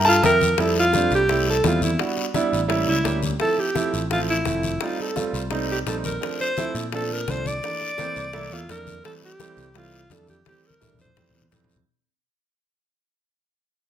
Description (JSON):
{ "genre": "Afro-Cuban jazz", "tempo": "170 BPM", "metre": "4/4", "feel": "straight", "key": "F major", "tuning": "A4 = 439 Hz", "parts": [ { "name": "warm grand piano", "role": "accompaniment", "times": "0.0-11.8 s", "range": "E3 to Bb5", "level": "-25 LUFS", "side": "right 3 dB", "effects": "none" }, { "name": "picked electric bass", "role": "bass", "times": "0.0-11.8 s", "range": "F1 to Bb2", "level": "-27 LUFS", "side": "equal", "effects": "none" }, { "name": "warm alto saxophone", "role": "melody", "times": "0.1-11.5 s", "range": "E4 to D5", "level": "-23 LUFS", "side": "right 1 dB", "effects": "none" }, { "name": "congas", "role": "percussion", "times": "0.1-11.8 s", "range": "none", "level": "-31 LUFS", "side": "left 4 dB", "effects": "none" }, { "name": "bongos", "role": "percussion", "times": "0.2-11.9 s", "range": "none", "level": "-33 LUFS", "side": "left 9 dB", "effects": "none" }, { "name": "guiro", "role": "percussion", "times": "0.2-11.9 s", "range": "none", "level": "-33 LUFS", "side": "left 7 dB", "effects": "none" } ], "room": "moderate large studio reverb, RT60 0.9 s", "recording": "none", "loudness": "-20 LUFS", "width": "side -10 dB against mid", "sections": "0.6-11.9 A section", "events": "fade-out 0.6-11.9; drum fill 10.5-11.9", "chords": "0.0 C7 (rootless); 0.6 Fmaj7; 2.0 Em7; 2.7 A7b9; 3.4 Fmaj9; 4.8 F7; 6.2 C13; 9.0 Fmaj7" }